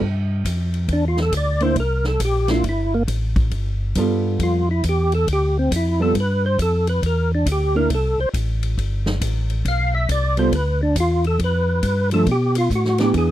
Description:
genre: soul jazz organ trio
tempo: 137 BPM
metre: 4/4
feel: swing 65% on 8ths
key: G mixolydian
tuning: A4 = 439 Hz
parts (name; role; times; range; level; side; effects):
- mellow tonewheel organ; bass; 0.0-13.3 s; G1 to B2; -20 LUFS; equal; overdrive, chorus vibrato, slow rotary speaker
- swinging big-band drum kit; drums; 0.0-13.3 s; hi-hat, kick drum, ride cymbal, snare drum; -28 LUFS; equal; none
- percussive tonewheel organ; melody; 0.9-13.3 s; Bb3 to F5; -21 LUFS; equal; slow rotary speaker, chorus vibrato
- hollow-body jazz guitar; accompaniment; 1.6-13.3 s; E3 to A4; -20 LUFS; right 2 dB; none
room: little or no reverb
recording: dry, close 1970s-style studio recording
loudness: -17 LUFS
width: side -13 dB against mid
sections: 0.0-13.3 A section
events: tonewheel organ solo 0.0-13.3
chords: 0.0 G5; 1.8 C7; 3.5 G9; 5.3 Dm; 6.1 Fadd9; 7.0 C9; 8.8 G9; 12.3 A13sus4

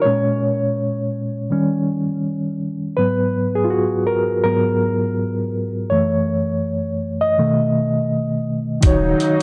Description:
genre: lo-fi hip hop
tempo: 82 BPM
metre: 4/4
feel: swing 59% on 16ths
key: Eb phrygian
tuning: A4 = 442 Hz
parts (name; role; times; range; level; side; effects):
- reed electric piano; accompaniment; 0.0-9.4 s; Gb2 to Eb5; -20 LUFS; equal; fast tremolo, cassette tape, low-pass filter
- muted symphonic string section; sustained chords; 8.8-9.4 s; Db3 to Eb4; -26 LUFS; equal; low-pass filter
- saturated sub bass; bass; 8.8-9.1 s; Eb1; -26 LUFS; equal; none
- dusty soul sampler-style drum kit; drums; 8.8-9.4 s; hi-hat, kick drum; -18 LUFS; equal; none
room: light reverb, studio reverb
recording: cassette tape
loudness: -20 LUFS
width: mono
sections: 0.0-8.8 A section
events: reed electric piano solo 0.0-8.8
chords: 0.1 Bbm7; 1.5 Eb7; 3.0 Abm9; 5.9 Gbm7; 7.4 B7; 8.8 Ebm7

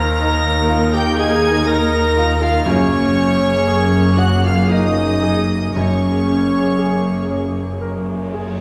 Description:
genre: cinematic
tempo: 57-61 BPM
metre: 3/4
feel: rubato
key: unclear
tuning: A4 = 439 Hz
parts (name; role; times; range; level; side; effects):
- clear studio violin section; melody; 0.0-7.8 s; Db6 to Bb6; -28 LUFS; equal; none
- rich studio violin section; second line; 0.0-7.8 s; Db5 to Bb5; -30 LUFS; equal; none
- silver concert flute; second line; 0.0-7.8 s; Db5 to Bb5; -27 LUFS; equal; none
- warm clarinet; second line; 0.0-7.8 s; Db4 to Bb4; -27 LUFS; equal; none
- dark studio viola section; accompaniment; 0.0-8.6 s; Bb3 to Bb4; -26 LUFS; equal; none
- warm grand piano; accompaniment; 0.0-8.6 s; Eb2 to Eb5; -25 LUFS; equal; none
- dark French horn section; sustained chords; 0.0-7.8 s; Db4 to Bb4; -25 LUFS; equal; none
- dark studio cello section; bass; 0.0-8.6 s; Eb2 to Gb2; -24 LUFS; equal; none
- dark studio double bass section; bass; 0.0-8.6 s; Gb1 to Eb2; -24 LUFS; equal; none
room: wet scoring stage reverb, RT60 1.7 s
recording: recorded in a church or concert hall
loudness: -16 LUFS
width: mono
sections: 0.0-8.6 A section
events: none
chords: 0.0 Ebsus2; 2.7 Gbadd9

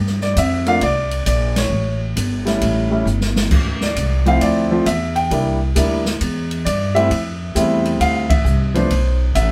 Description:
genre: jazz piano trio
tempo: 134 BPM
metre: 4/4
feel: swing 66% on 8ths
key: F major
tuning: A4 = 441 Hz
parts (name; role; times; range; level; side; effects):
- upright bass; bass; 0.0-9.5 s; G1 to G2; -22 LUFS; equal; none
- open jazz drum kit; drums; 0.1-9.5 s; crash cymbal, hi-hat, kick drum, ride cymbal, snare drum; -26 LUFS; equal; none
- warm concert grand piano; melody; 0.2-9.5 s; F3 to G5; -21 LUFS; equal; none
room: moderate small room reverb, RT60 0.6 s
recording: band playing live in one room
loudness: -18 LUFS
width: mono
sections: 0.0-9.5 A section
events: band accent 1.5, 8.2; drum fill 3.1-3.5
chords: 0.0 Gm7; 1.7 A7; 3.5 Dm9; 5.3 C9; 7.1 Fmaj7; 8.9 Amadd9

